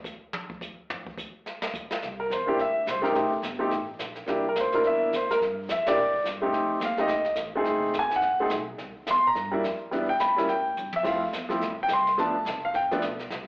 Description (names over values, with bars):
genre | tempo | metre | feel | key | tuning
jazz piano trio | 213 BPM | 4/4 | swing 60% on 8ths | C mixolydian | A4 = 441 Hz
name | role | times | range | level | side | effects
jazz brush drum kit | drums | 0.0-13.5 s | brushed snare drum, crash cymbal, hi-hat, kick drum, ride cymbal, snare drum, toms | -35 LUFS | equal | slapback echo
upright bass | bass | 2.0-13.5 s | F1 to C3 | -41 LUFS | equal | none
clear grand piano | melody | 2.2-13.0 s | F3 to C6 | -24 LUFS | equal | slapback echo
room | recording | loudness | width
moderate plate reverb, RT60 1.6 s, studio ambience | live gig heard through the venue's PA, club reverb, AM radio sound | -24 LUFS | side -25 dB against mid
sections
0.0-2.0 A section; 2.0-13.5 B section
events
drum solo 0.0-2.0; band accent 5.8; drum fill 10.8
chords
0.0 N.C.; 2.0 C9; 3.2 F9; 4.3 C9; 5.4 G7(no3); 6.0 Csus2; 6.5 F9; 7.7 F#dim7; 8.8 C7; 9.9 Em7; 10.5 Emadd11 (rootless); 11.0 Dm7 (rootless); 12.2 G9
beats
0.05 0.33 0.61 | 0.90 1.18 1.46 1.74 | 2.02 2.31 2.59 2.87 | 3.15 3.43 3.71 4.00 | 4.28 4.56 4.84 5.12 | 5.41 5.69 5.97 6.25 | 6.54 6.82 7.10 7.38 | 7.66 7.94 8.23 8.51 | 8.79 9.07 9.35 9.64 | 9.92 10.20 10.48 10.76 | 11.05 11.33 11.61 11.89 | 12.18 12.46 12.74 13.02 | 13.31